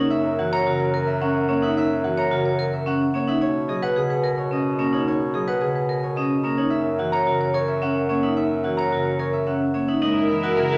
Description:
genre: classical, minimalist pattern music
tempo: 109 BPM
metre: 3/4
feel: straight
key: F# mixolydian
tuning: A4 = 439 Hz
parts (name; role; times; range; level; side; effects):
- concert harp; melody; 0.0-10.8 s; G#4 to A#5; -29 LUFS; equal; none
- vibraphone with hard mallets; arpeggios; 0.0-10.8 s; C#4 to C#5; -26 LUFS; equal; none
- clear bass clarinet; bass; 0.1-10.8 s; F#2 to B2; -30 LUFS; equal; none
- marimba with soft mallets; accompaniment; 0.4-10.8 s; C#3 to A#3; -31 LUFS; equal; none
- mellow French horn; second line; 10.0-10.8 s; A#4; -26 LUFS; equal; none
- clear studio string section; sustained chords; 10.0-10.8 s; E4 to A#4; -30 LUFS; equal; none
room: wet recital hall reverb, RT60 1.4 s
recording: none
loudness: -22 LUFS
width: mono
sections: 0.0-10.0 A section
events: none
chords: 0.1 F#7; 3.4 Bmaj9; 6.7 F#7; 10.0 F#13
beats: | 0.12 0.67 1.22 | 1.77 2.32 2.87 | 3.42 3.97 4.52 | 5.07 5.62 6.17 | 6.72 7.27 7.82 | 8.37 8.92 9.47 | 10.02 10.57

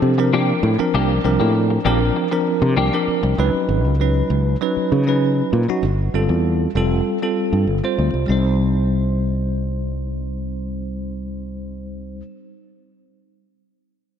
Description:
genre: jazz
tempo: 98 BPM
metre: 4/4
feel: straight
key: C dorian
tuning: A4 = 440 Hz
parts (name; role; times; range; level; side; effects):
- bell-like tine electric piano; accompaniment; 0.0-12.2 s; F3 to C5; -21 LUFS; right 1 dB; medium stereo tremolo
- fretless electric bass; bass; 0.0-12.2 s; F1 to Db3; -19 LUFS; equal; none
- clean electric guitar; stabs; 0.2-3.3 s; F3 to G4; -24 LUFS; left 4 dB; analog chorus
room: moderate lush hall reverb, RT60 2.8 s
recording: bright 1980s-style digital production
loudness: -17 LUFS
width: side -8 dB against mid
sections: 0.0-8.3 A section; 8.3-10.8 B section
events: none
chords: 0.0 C9sus4; 3.4 Db9sus4; 5.8 G9sus4; 8.3 Cm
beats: 0.33 | 0.94 1.55 2.16 2.77 | 3.38 3.99 4.61 5.22 | 5.83 6.45 7.06 7.67 | 8.29 8.90 9.52 10.14

